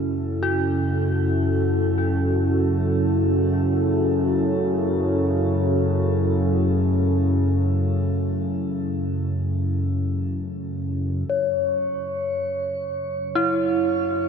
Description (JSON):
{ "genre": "dark ambient drone", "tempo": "free time", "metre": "none", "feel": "none", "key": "F# minor", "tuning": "A4 = 440 Hz", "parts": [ { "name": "dark analog pad", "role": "sustained chords", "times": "0.0-11.3 s", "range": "C#4 to A4", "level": "-25 LUFS", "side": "equal", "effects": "chorus, shimmer reverb" }, { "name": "dark detuned synth bell", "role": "arpeggios", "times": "0.0-14.3 s", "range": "E4 to F#4", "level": "-27 LUFS", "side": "right 4 dB", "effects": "chorus, phaser, analog delay, shimmer reverb" }, { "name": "analog drone", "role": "drone", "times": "0.0-14.3 s", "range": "F#2 to C#3", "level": "-22 LUFS", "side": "equal", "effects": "chorus" }, { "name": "bronze singing bowl", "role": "texture", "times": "0.0-14.3 s", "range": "C#5 to G#5", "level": "-24 LUFS", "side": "left 4 dB", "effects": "shimmer reverb" } ], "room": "wet huge ambient reverb, RT60 7.8 s", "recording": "dreamy mix soaked in reverb", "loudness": "-20 LUFS", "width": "side -6 dB against mid", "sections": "0.0-11.3 A section; 11.3-14.3 B section", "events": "fade-in on analog synth pad 0.0-11.3; filter sweep on synth drone 0.0-11.3", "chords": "0.0 F#m; 11.3 F#5", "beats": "free time" }